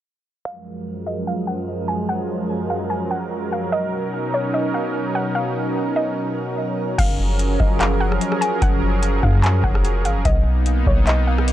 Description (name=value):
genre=hip hop, atmospheric cloud-rap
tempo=147 BPM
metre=4/4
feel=half-time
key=F# major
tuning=A4 = 444 Hz
part: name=soft round pluck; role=melody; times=0.5-11.5 s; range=C#5 to G#5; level=-26 LUFS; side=equal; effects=chorus, low-pass filter, analog delay
part: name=warm analog pad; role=sustained chords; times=0.5-11.5 s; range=F#2 to A#4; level=-23 LUFS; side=right 1 dB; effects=chorus, sidechain pumping, low-pass filter
part: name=soft 808-style bass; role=bass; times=7.0-11.5 s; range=E#1 to F#2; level=-19 LUFS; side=equal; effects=none
part: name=booming analog drum machine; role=drums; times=7.0-11.5 s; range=crash cymbal, handclaps, hi-hat, kick drum, rim click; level=-21 LUFS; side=equal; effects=none
room=little or no reverb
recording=dry, gritty hardware recording, transformer saturation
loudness=-18 LUFS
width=side -13 dB against mid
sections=0.5-7.0 A section; 7.0-11.5 B section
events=filter sweep 0.5-7.0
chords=0.5 F#maj7; 3.7 Bmaj9; 7.0 F#maj7; 10.3 Bmaj7